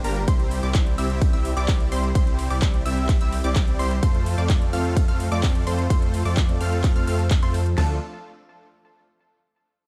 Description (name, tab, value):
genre	EDM, festival progressive house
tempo	128 BPM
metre	4/4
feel	straight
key	D minor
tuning	A4 = 438 Hz
part	unison pluck	arpeggios	0.0-8.0 s	A5 to F6	-36 LUFS	equal	sidechain pumping, delay
part	supersaw chords	riff	0.0-8.0 s	F3 to F5	-30 LUFS	equal	sidechain pumping, delay
part	detuned saw bass	bass	0.0-8.0 s	G1 to F2	-27 LUFS	equal	chorus, sidechain pumping
part	big-room dance drum kit	drums	0.0-7.8 s	handclaps, hi-hat, ride cymbal	-36 LUFS	equal	overdrive, small room ambience
part	big-room dance drum kit	drums	0.3-7.9 s	crash cymbal, kick drum, snare drum, toms	-23 LUFS	equal	overdrive, small room ambience
room	digital ambience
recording	dark, warm production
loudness	-22 LUFS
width	mono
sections	0.0-7.8 A section; 7.8-9.7 B section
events	drop 0.0-7.8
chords	0.3 C; 4.0 F; 7.8 Dm